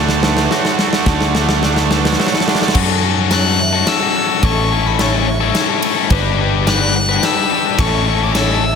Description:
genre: post-rock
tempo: 107 BPM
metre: 3/4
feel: straight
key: unclear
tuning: A4 = 440 Hz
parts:
  - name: felt-muted upright piano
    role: arpeggios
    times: 0.0-8.8 s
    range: A4 to F#5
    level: -28 LUFS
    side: right 3 dB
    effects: ensemble chorus, ping-pong delay
  - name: twangy electric guitar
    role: arpeggios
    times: 0.0-2.8 s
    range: D3 to F#4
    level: -26 LUFS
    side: left 3 dB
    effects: wide subtle chorus, ping-pong delay
  - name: distorted electric guitar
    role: riff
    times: 0.0-2.7 s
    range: D3 to F#4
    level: -18 LUFS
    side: right 8 dB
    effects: overdrive
  - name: fingered electric bass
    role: bass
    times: 0.0-8.8 s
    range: G1 to F#2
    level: -18 LUFS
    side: equal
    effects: none
  - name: huge arena drum kit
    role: drums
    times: 0.1-8.5 s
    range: crash cymbal, kick drum, ride cymbal, snare drum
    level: -18 LUFS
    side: equal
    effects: none
  - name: tight distorted guitar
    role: riff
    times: 2.7-8.7 s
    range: F#3 to B4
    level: -17 LUFS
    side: left 11 dB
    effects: distortion
  - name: warm violin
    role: melody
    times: 3.3-8.8 s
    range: B5 to F#6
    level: -19 LUFS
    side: left 3 dB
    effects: ping-pong delay
room: moderate lush hall reverb, RT60 1.7 s, studio reverb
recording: dreamy mix soaked in reverb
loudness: -12 LUFS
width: side -6 dB against mid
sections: 0.0-2.8 A section; 2.8-8.8 B section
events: build-up 0.0-2.8; drum fill 0.0-2.8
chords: 0.0 D; 2.8 F#m7; 4.4 A; 6.1 Gmaj7; 7.8 A

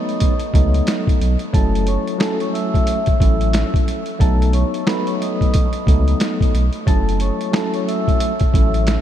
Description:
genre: hip hop, boom-bap hip-hop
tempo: 90 BPM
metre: 4/4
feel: swing 60% on 16ths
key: F# dorian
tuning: A4 = 439 Hz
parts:
  - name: vibraphone with soft mallets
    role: melody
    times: 0.0-9.0 s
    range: A4 to E6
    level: -24 LUFS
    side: left 1 dB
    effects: high-pass filter, low-pass filter, tape echo
  - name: tine electric piano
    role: accompaniment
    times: 0.0-9.0 s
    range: F#3 to A4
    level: -22 LUFS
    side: right 1 dB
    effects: medium stereo tremolo, cassette tape, high-pass filter, low-pass filter
  - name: boom bap sampler-style drum kit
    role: drums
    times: 0.1-9.0 s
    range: hi-hat, kick drum, snare drum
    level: -18 LUFS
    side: equal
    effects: vintage 12-bit sampler grit
  - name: warm sub bass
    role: bass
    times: 0.5-9.0 s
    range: F#1 to C#2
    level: -17 LUFS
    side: equal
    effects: none
room: light reverb, digital ambience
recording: none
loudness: -15 LUFS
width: side -11 dB against mid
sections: 0.0-9.0 A section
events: none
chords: 0.0 B7; 1.5 F#m7; 4.2 B7; 6.9 F#m7

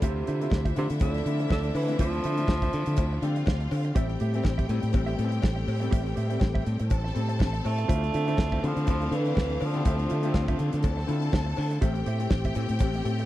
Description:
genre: disco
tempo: 122 BPM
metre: 4/4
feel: swing 56% on 16ths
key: D minor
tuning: A4 = 440 Hz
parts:
  - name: mellow tenor saxophone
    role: melody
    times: 0.0-3.4, 7.7-11.1 s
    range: C3 to A3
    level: -32 LUFS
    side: right 2 dB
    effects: none
  - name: bright studio string section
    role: second line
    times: 0.0-13.3 s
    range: D4 to A5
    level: -39 LUFS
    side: left 2 dB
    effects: none
  - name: clear grand piano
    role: accompaniment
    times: 0.0-13.3 s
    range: D3 to F5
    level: -35 LUFS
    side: left 6 dB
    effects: none
  - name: mellow electric guitar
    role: accompaniment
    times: 0.0-13.2 s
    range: F4 to E5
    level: -38 LUFS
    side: right 7 dB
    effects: none
  - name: warm studio string section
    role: sustained chords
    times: 0.0-13.3 s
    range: D3 to A4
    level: -36 LUFS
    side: left 1 dB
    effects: none
  - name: modern bright fingered electric bass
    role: bass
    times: 0.0-13.2 s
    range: A1 to D3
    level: -28 LUFS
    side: equal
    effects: none
  - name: damped 70s drum kit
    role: drums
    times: 0.0-13.3 s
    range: hi-hat, kick drum, snare drum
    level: -26 LUFS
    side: equal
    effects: none
  - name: cowbell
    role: percussion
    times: 0.0-12.9 s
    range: none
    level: -42 LUFS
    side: left 11 dB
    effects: none
room: small room ambience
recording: dry, close 1970s-style studio recording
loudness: -24 LUFS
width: side -15 dB against mid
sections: 0.0-13.3 A section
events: none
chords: 0.0 Dm9; 4.0 Am7; 7.9 Dm9; 11.8 Am7

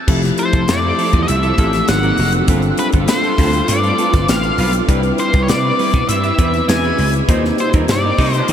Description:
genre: polished 1980s jazz-funk pop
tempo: 100 BPM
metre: 4/4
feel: straight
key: unclear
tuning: A4 = 440 Hz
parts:
  - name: bell-like tine electric piano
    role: accompaniment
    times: 0.1-8.5 s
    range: F3 to C5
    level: -20 LUFS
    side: left 2 dB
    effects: lush chorus
  - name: dark studio string section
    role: sustained chords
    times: 0.1-8.5 s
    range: C3 to B4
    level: -25 LUFS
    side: right 3 dB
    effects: none
  - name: clean electric guitar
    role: riff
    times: 0.1-8.5 s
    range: F3 to C5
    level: -26 LUFS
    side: right 4 dB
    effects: wide subtle chorus
  - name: vintage slap bass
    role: bass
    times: 0.1-8.5 s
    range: F1 to Eb3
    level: -18 LUFS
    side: equal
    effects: none
  - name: crisp fusion drum kit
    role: drums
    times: 0.1-8.5 s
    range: crash cymbal, hi-hat, kick drum, snare drum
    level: -19 LUFS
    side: equal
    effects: none
  - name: octave-fuzz lead guitar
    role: melody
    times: 0.4-8.5 s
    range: B4 to G#5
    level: -19 LUFS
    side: left 2 dB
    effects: distortion, ping-pong delay
  - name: clear horn section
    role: second line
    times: 7.3-8.5 s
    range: G3 to C5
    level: -27 LUFS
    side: left 2 dB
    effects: ping-pong delay
room: wet huge ambient reverb, RT60 7.1 s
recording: dreamy mix soaked in reverb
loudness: -13 LUFS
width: side -9 dB against mid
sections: 0.1-8.5 A section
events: band accent 7.3-8.5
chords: 0.1 Fmaj7; 1.9 G#9; 2.5 G9sus4; 4.9 Cmaj7; 6.7 E6; 7.3 Eb6

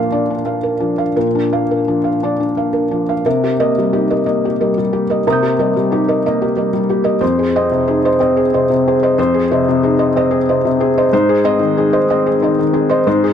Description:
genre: neoclassical minimalist piano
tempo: 61 BPM (dotted quarters)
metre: 6/8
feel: rubato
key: C minor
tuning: A4 = 436 Hz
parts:
  - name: felt-muted upright piano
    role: solo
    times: 0.0-13.3 s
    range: F2 to G6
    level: -13 LUFS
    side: left 1 dB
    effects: tape echo
room: light reverb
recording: dark, warm production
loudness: -13 LUFS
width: side -8 dB against mid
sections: 0.0-3.3 A section; 3.3-13.3 B section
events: none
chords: 0.0 Bb; 3.3 Cm7; 7.2 Fm7; 11.1 Ab

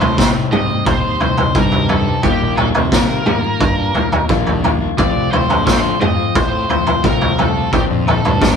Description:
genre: psychedelic rock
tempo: 88 BPM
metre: 4/4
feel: straight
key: unclear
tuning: A4 = 439 Hz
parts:
  - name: octave-fuzz lead guitar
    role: melody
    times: 0.0-8.6 s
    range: G4 to Eb5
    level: -21 LUFS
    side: right 1 dB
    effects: wah, distortion, digital delay
  - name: clean electric guitar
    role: riff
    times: 0.0-8.6 s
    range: Bb2 to F4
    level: -19 LUFS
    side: left 6 dB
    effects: none
  - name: fuzz picked electric bass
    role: bass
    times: 0.0-8.6 s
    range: Bb1 to D3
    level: -22 LUFS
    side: right 2 dB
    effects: overdrive
  - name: raw garage drum kit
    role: drums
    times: 0.0-8.6 s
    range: kick drum, snare drum, toms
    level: -16 LUFS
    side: right 1 dB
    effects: none
  - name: congas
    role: percussion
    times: 0.0-8.4 s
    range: none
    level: -29 LUFS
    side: right 11 dB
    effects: none
room: moderate studio reverb, RT60 0.8 s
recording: band playing live in one room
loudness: -13 LUFS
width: side -6 dB against mid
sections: 0.0-8.6 A section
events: none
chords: 0.0 Cm; 2.2 Ebadd9; 5.0 F; 7.7 Bbadd9

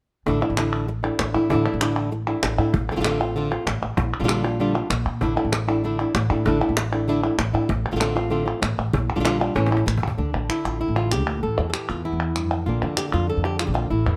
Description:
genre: flamenco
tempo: 193 BPM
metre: 4/4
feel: straight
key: unclear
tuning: A4 = 440 Hz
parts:
  - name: flamenco guitar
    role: melody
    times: 0.3-14.2 s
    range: E2 to A4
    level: -26 LUFS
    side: equal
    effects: none
  - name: upright bass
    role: bass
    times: 0.3-14.2 s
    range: A1 to Bb2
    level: -27 LUFS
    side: equal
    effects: none
  - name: cajon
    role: percussion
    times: 0.3-10.1 s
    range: none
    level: -30 LUFS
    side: equal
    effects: none
  - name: palmas hand claps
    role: percussion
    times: 0.4-14.2 s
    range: none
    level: -31 LUFS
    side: equal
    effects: none
room: little or no reverb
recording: close, detailed microphones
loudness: -23 LUFS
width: mono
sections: 0.3-10.2 A section; 10.2-14.2 B section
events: drum fill 9.6-10.2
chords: 0.3 Asus4; 4.0 Bb6; 5.2 Asus4; 8.9 Bb6; 9.6 A; 10.2 Dsus2; 11.4 A5; 12.7 Bb

